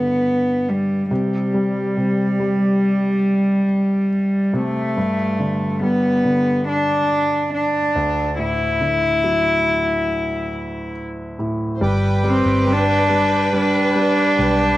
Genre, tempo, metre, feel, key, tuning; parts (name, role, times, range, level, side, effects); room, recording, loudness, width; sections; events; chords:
pop ballad; 70 BPM; 4/4; straight; G major; A4 = 440 Hz
warm cello; melody; 0.0-14.8 s; G3 to E4; -18 LUFS; equal; cassette tape
warm concert grand piano; accompaniment; 0.0-14.8 s; D2 to G3; -24 LUFS; equal; cassette tape
rich studio violin section; second line; 11.8-14.8 s; B4 to C5; -25 LUFS; right 1 dB; cassette tape
accordion; sustained chords; 11.8-14.8 s; B4 to D6; -26 LUFS; right 2 dB; cassette tape
vintage muted fingered electric bass; bass; 11.8-14.8 s; G1 to B1; -22 LUFS; equal
wet studio reverb, RT60 0.6 s; home recording on cassette; -16 LUFS; side -16 dB against mid
0.0-11.8 A section; 11.8-14.8 B section
0.0 G; 1.1 C5; 5.0 G; 8.0 Dadd9; 11.8 G